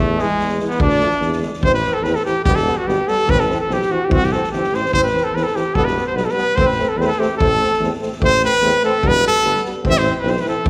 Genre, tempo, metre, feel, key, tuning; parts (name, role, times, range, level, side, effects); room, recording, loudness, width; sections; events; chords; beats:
balkan folk, Balkan brass band; 146 BPM; 2/4; straight; A minor; A4 = 436 Hz
warm trumpet; melody; 0.0-10.7 s; G#3 to E5; -20 LUFS; equal
mellow flugelhorn; second line; 0.0-8.0 s; F#4 to D5; -27 LUFS; equal
warm tuba; bass; 0.0-10.7 s; E1 to E2; -26 LUFS; equal
clear trombone; accompaniment; 0.2-10.7 s; G#3 to C4; -28 LUFS; equal
mellow euphonium; accompaniment; 0.2-10.7 s; D3 to A3; -29 LUFS; equal
street-band drum kit; percussion; 0.2-10.7 s; kick drum, snare drum; -26 LUFS; equal
wet recital hall reverb, RT60 1.9 s; recorded in a church or concert hall; -17 LUFS; mono
0.0-1.6 A section; 1.6-8.2 B section; 8.2-10.7 B section
0.0 E; 0.8 Dm; 1.2 E7; 1.6 Am; 2.5 Em; 3.3 Am; 4.1 C; 4.9 Am; 5.7 Em; 6.6 Am; 9.0 Em; 9.8 Am
0.39 | 0.80 1.21 | 1.62 2.04 | 2.45 2.86 | 3.27 3.69 | 4.10 4.51 | 4.92 5.33 | 5.75 6.16 | 6.57 6.98 | 7.39 7.80 | 8.21 8.61 | 9.02 9.43 | 9.84 10.24 | 10.65